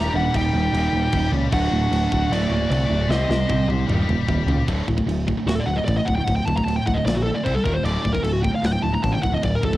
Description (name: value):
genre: heavy metal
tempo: 152 BPM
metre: 4/4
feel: straight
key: D phrygian dominant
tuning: A4 = 440 Hz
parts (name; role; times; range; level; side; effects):
- high-gain lead guitar; melody; 0.0-9.7 s; F#4 to Bb5; -25 LUFS; left 1 dB; distortion, cassette tape
- high-gain lead guitar; second line; 0.0-3.7 s; A3 to G4; -28 LUFS; right 6 dB; distortion, cassette tape
- distorted electric guitar; riff; 0.0-9.8 s; D2 to C5; -30 LUFS; left 6 dB; overdrive, cassette tape
- heavy high-gain guitar; riff; 0.0-9.8 s; D2 to C4; -27 LUFS; right 5 dB; distortion, cassette tape
- growling picked electric bass; bass; 0.0-9.8 s; D1 to C#2; -23 LUFS; equal; overdrive
- tight metal drum kit; drums; 0.3-9.8 s; crash cymbal, kick drum, snare drum, toms; -27 LUFS; equal; none
room: studio ambience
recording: home recording on cassette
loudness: -19 LUFS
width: side -16 dB against mid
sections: 0.0-4.7 A section; 4.7-9.8 B section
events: half time 0.0-4.7; drum fill 3.1-4.7; lead electric guitar solo 4.7-9.8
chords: 0.0 Eb; 1.5 D; 3.1 Cm; 3.9 Eb; 4.7 D5; 7.5 C5; 7.7 Eb5; 7.8 D5